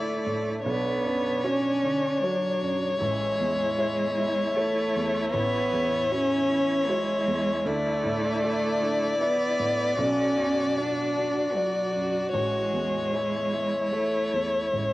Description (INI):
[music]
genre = neoclassical piano and strings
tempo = 77 BPM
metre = 3/4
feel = rubato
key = B dorian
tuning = A4 = 440 Hz
[part]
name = warm violin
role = melody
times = 0.0-14.9 s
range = C#5 to D5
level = -26 LUFS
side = left 2 dB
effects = cassette tape
[part]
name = warm cello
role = second line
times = 0.0-14.9 s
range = F#3 to D4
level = -28 LUFS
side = right 2 dB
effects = cassette tape
[part]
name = clear upright piano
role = accompaniment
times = 0.0-14.9 s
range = A1 to E5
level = -32 LUFS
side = right 1 dB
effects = cassette tape
[part]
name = rich viola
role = accompaniment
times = 0.0-14.9 s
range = D4 to F#4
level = -35 LUFS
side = right 1 dB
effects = cassette tape
[sound]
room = moderate spring reverb, RT60 1.8 s, small room ambience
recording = home recording on cassette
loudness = -23 LUFS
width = side -17 dB against mid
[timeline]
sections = 0.0-14.9 A section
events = none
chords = 0.0 Dsus2; 0.7 Bmadd9; 3.0 A; 5.3 F#m7/A; 7.6 Dsus2; 10.0 Bmadd9; 12.3 A